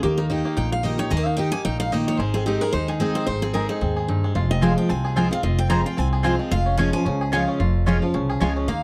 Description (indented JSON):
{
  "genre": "bluegrass",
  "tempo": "222 BPM",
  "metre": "4/4",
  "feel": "swing 56% on 8ths",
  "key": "unclear",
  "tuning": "A4 = 440 Hz",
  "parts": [
    { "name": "picked steel-string acoustic guitar", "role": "melody", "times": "0.0-8.8 s", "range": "Eb4 to Bb5", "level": "-29 LUFS", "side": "equal", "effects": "none" },
    { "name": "picked steel-string acoustic guitar", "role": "accompaniment", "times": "0.0-8.8 s", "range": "F2 to Ab4", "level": "-26 LUFS", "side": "equal", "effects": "none" },
    { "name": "bluegrass banjo", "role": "arpeggios", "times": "0.0-8.8 s", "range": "F3 to Ab4", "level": "-32 LUFS", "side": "equal", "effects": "none" },
    { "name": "upright bass", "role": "bass", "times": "0.0-8.8 s", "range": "F1 to Eb2", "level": "-27 LUFS", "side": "equal", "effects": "none" },
    { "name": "mandolin", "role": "stabs", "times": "4.6-8.5 s", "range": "C4 to Ab5", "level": "-27 LUFS", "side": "equal", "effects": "none" }
  ],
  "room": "little or no reverb",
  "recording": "dry, close 1970s-style studio recording",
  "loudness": "-22 LUFS",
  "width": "mono",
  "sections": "0.0-8.8 A section",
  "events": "steel-string acoustic guitar solo 0.0-8.8",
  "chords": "0.0 Eb; 2.2 Ab; 4.4 Fm; 6.5 Db/F"
}